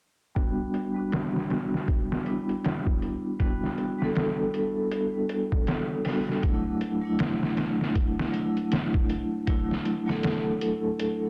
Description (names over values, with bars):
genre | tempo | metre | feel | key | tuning
trip hop | 79 BPM | 4/4 | swing 60% on 16ths | E minor | A4 = 440 Hz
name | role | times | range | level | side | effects
vibraphone with medium mallets | accompaniment | 0.3-11.3 s | F#3 to A4 | -30 LUFS | equal | tremolo, low-pass filter, tape echo
trip hop sampler-style drum kit | drums | 0.4-11.2 s | hi-hat, kick drum, snare drum | -31 LUFS | equal | overdrive, low-pass filter on hats, low-pass filter on kick, low-pass filter on snare, low-pass filter on room
room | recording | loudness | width
light reverb, digital ambience | dense, heavily limited modern master | -28 LUFS | mono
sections
0.4-11.3 A section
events
filter sweep on vibraphone 0.4-11.3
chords
0.4 Em9; 6.4 Dadd9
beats
| 0.36 1.12 1.88 2.64 | 3.40 4.16 4.92 5.68 | 6.44 7.20 7.96 8.72 | 9.47 10.23 10.99